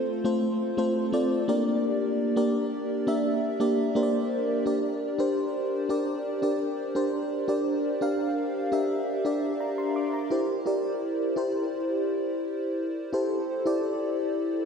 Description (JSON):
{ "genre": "pop", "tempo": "85 BPM", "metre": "4/4", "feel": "straight", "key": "unclear", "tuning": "A4 = 439 Hz", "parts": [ { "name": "FM electric piano with soft pad layer", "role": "solo", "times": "0.0-14.7 s", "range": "A3 to D6", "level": "-25 LUFS", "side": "equal", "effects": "chorus, diffuse ambient delay" } ], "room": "wet lush hall reverb, RT60 2.7 s", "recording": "dreamy mix soaked in reverb", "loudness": "-25 LUFS", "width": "side -6 dB against mid", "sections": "0.0-4.7 A section; 4.7-10.3 B section; 10.3-14.7 C section", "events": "none", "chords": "0.0 F/A; 1.5 Gm; 10.3 C7; 13.1 Am7" }